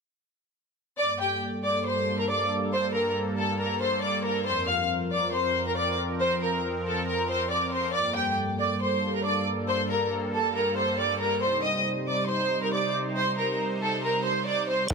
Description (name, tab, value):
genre	hip hop, trap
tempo	138 BPM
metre	4/4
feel	half-time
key	G minor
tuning	A4 = 440 Hz
part	warm studio violin section	melody	1.0-14.9 s	G4 to F6	-27 LUFS	equal	none
part	sweeping resonant pad	sustained chords	1.0-14.9 s	F2 to C5	-35 LUFS	right 1 dB	chorus
part	growling 808-style bass	bass	14.9 s	G1	-27 LUFS	equal	none
part	booming analog drum machine	drums	14.9 s	hi-hat, kick drum	-30 LUFS	equal	overdrive
room	little or no reverb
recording	none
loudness	-24 LUFS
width	side -4 dB against mid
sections	1.0-14.9 A section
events	none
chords	1.0 Gmadd9; 4.5 Fsus4; 7.9 Gmadd9; 11.4 Cm